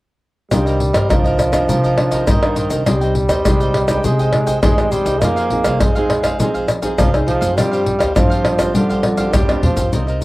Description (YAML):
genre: samba and choro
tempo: 102 BPM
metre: 4/4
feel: straight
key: C minor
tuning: A4 = 440 Hz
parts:
  - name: bright trombone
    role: second line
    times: 0.5-9.9 s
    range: D3 to Bb3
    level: -19 LUFS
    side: right 1 dB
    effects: cassette tape
  - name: cavaquinho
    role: accompaniment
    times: 0.5-10.2 s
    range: D4 to G5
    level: -25 LUFS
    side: right 1 dB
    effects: cassette tape
  - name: nylon-string guitar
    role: accompaniment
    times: 0.5-10.2 s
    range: G2 to Ab4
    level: -24 LUFS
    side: equal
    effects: cassette tape
  - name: upright bass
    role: bass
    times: 0.5-10.2 s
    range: C2 to G3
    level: -21 LUFS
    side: equal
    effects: none
  - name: egg shaker, surdo, pandeiro and tamborim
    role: percussion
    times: 0.5-10.2 s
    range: none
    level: -17 LUFS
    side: left 1 dB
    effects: none
room: wet booth ambience, RT60 0.2 s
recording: home recording on cassette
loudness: -13 LUFS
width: side -19 dB against mid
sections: 0.5-9.9 A section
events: drum fill 9.5-9.9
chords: 0.5 Cm9; 2.9 Abmaj7/C; 5.2 Fm7; 7.6 G7sus4